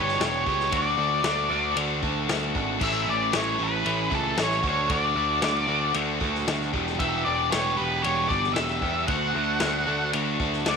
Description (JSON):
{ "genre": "classic rock", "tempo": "115 BPM", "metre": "4/4", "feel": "straight", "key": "unclear", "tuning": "A4 = 439 Hz", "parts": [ { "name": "octave-fuzz lead guitar", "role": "melody", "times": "0.0-10.8 s", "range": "A4 to F#5", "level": "-26 LUFS", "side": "left 1 dB", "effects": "distortion, slapback echo" }, { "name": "overdriven electric guitar", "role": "riff", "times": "0.0-10.8 s", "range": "E2 to G4", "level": "-27 LUFS", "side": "equal", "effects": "spring reverb" }, { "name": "overdriven picked electric bass", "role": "bass", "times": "0.0-10.8 s", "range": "E1 to E2", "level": "-30 LUFS", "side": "right 2 dB", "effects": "none" }, { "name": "vintage drum kit", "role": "drums", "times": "0.1-10.8 s", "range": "crash cymbal, kick drum, ride cymbal, snare drum", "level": "-30 LUFS", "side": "left 3 dB", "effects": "none" } ], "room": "little or no reverb", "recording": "1960s-style stereo", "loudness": "-22 LUFS", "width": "side -5 dB against mid", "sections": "0.0-10.8 A section", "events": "none", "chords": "0.0 Em; 0.7 D; 2.8 Aadd9; 4.6 D; 6.7 Em; 9.1 D", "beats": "0.20 | 0.72 1.25 1.77 2.29 | 2.81 3.33 3.86 4.38 | 4.90 5.42 5.95 6.47 | 6.99 7.52 8.04 8.56 | 9.09 9.61 10.13 10.66" }